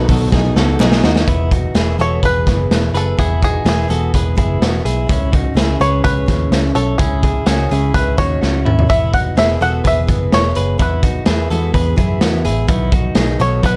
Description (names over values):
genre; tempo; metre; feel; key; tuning
jangly indie pop; 126 BPM; 4/4; straight; E major; A4 = 439 Hz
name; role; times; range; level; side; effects
bluegrass banjo; melody; 0.0-13.8 s; G#4 to F#5; -22 LUFS; equal; plate reverb
picked steel-string acoustic guitar; accompaniment; 0.0-13.8 s; B2 to E4; -25 LUFS; equal; none
reed electric piano; accompaniment; 0.0-1.3 s; B3 to A4; -23 LUFS; equal; spring reverb
warm studio string section; sustained chords; 0.0-1.2 s; none; barely audible; none; none
direct-recorded clean electric guitar; arpeggios; 0.0-13.8 s; B3 to C#5; -25 LUFS; equal; none
vintage muted picked electric bass; bass; 0.0-13.8 s; E1 to F#2; -20 LUFS; equal; none
raw garage drum kit; drums; 0.1-13.7 s; hi-hat, kick drum, snare drum, toms; -19 LUFS; equal; none
group handclap; percussion; 0.8-0.9 s; none; -35 LUFS; equal; none
room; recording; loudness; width
moderate studio reverb, RT60 0.6 s; none; -15 LUFS; mono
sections
0.0-1.3 A section; 1.3-13.8 B section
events
drum fill 0.3-1.3, 8.4-8.9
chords
0.0 B; 1.3 E; 5.1 C#m; 8.9 E; 12.7 B